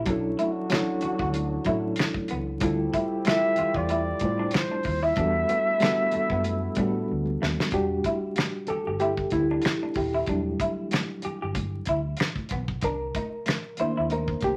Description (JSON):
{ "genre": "R&B, neo-soul", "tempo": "94 BPM", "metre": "4/4", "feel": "swing 55% on 16ths", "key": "E minor", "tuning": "A4 = 440 Hz", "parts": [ { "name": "reed electric piano", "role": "accompaniment", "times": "0.0-14.6 s", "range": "Eb3 to C5", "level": "-30 LUFS", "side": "equal", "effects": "fast tremolo" }, { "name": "vintage muted fingered electric bass", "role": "bass", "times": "0.0-14.6 s", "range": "D#1 to A2", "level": "-34 LUFS", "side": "equal", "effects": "none" }, { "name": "electric guitar through a small old amp", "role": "second line", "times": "0.1-14.5 s", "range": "G3 to G4", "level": "-34 LUFS", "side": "equal", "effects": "spring reverb" }, { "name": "clear trombone section", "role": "stabs", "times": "0.1-7.4 s", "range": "F#3 to G4", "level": "-40 LUFS", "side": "equal", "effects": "none" }, { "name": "damped 70s drum kit", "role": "drums", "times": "0.1-14.6 s", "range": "finger snaps, hi-hat, kick drum, snare drum", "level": "-31 LUFS", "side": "equal", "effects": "none" }, { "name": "congas", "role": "percussion", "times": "0.1-14.6 s", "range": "none", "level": "-42 LUFS", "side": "equal", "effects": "none" }, { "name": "breathy flugelhorn", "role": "melody", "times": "3.3-7.1 s", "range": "C5 to E5", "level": "-28 LUFS", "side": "equal", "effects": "none" } ], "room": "moderate studio reverb, RT60 0.6 s", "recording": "vinyl crackle", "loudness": "-26 LUFS", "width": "mono", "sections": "0.0-7.7 A section; 7.7-14.6 B section", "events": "drum fill 7.1-7.7; reed electric piano solo 7.7-14.6", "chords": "0.1 Bm11 (rootless); 2.6 Dm11; 5.2 Em11; 7.7 Em9; 12.8 Cm9" }